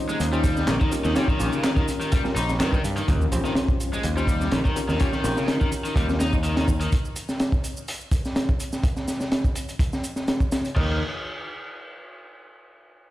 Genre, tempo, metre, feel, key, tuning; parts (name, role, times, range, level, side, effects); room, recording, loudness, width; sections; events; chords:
breakbeat, breaks; 125 BPM; 4/4; straight; A4 = 440 Hz
phased analog pad; sustained chords; 0.0-3.1 s; Eb3 to Eb4; -32 LUFS; equal; phaser, chorus, sidechain pumping
tine electric piano; stabs; 0.0-6.2 s; Db4 to Db5; -30 LUFS; left 2 dB; overdrive, medium stereo tremolo, tape echo
cranked stack guitar; riff; 0.1-6.9, 10.8-11.0 s; Db3 to Eb4; -29 LUFS; left 1 dB; overdrive, vintage 12-bit sampler grit, tape echo
electronic shaker and handclaps; drums; 0.1-10.7 s; -38 LUFS; right 2 dB
overdriven picked electric bass; bass; 0.2-6.9, 10.8-11.0 s; Bb1 to G2; -25 LUFS; equal
crunchy breakbeat drum kit; drums; 0.2-10.9 s; crash cymbal, hi-hat, kick drum, snare drum; -24 LUFS; equal
impact; sound effects; 3.1-5.0 s; -31 LUFS; equal
light reverb; played on a big sound system in a bare room, stone room reverb; -21 LUFS; side -15 dB against mid
0.0-3.1 A section; 3.1-10.8 B section; 10.8-12.7 C section
drop 0.0-3.1; impact 3.1-5.0
0.0 Eb7; 10.8 N.C.